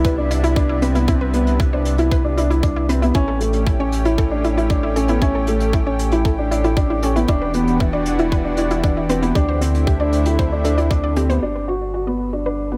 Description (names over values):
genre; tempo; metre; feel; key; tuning
piano and strings electronica; 116 BPM; 4/4; straight; G major; A4 = 440 Hz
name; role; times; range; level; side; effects
lush unison pad; sustained chords; 0.0-12.8 s; C3 to B4; -28 LUFS; equal; chorus, sidechain pumping
analog pluck; arpeggios; 0.0-12.8 s; E4 to D5; -29 LUFS; equal; chorus, sidechain pumping, tape echo
dark upright piano; riff; 0.0-12.8 s; A3 to F#4; -23 LUFS; equal; low-pass filter, tape echo
warm sub bass; bass; 0.0-12.8 s; E1 to D2; -24 LUFS; equal; sidechain pumping
electronic kick drum; drums; 0.0-11.0 s; none; -21 LUFS; equal; none
hi-hat; drums; 0.0-11.4 s; none; -38 LUFS; equal; none
room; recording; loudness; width
light reverb, small room ambience; none; -18 LUFS; mono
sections
0.0-11.4 A section; 11.4-12.8 B section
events
none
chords
0.0 Cmaj7; 3.1 A7; 7.3 Em7; 9.4 D7sus4; 11.4 Gmaj7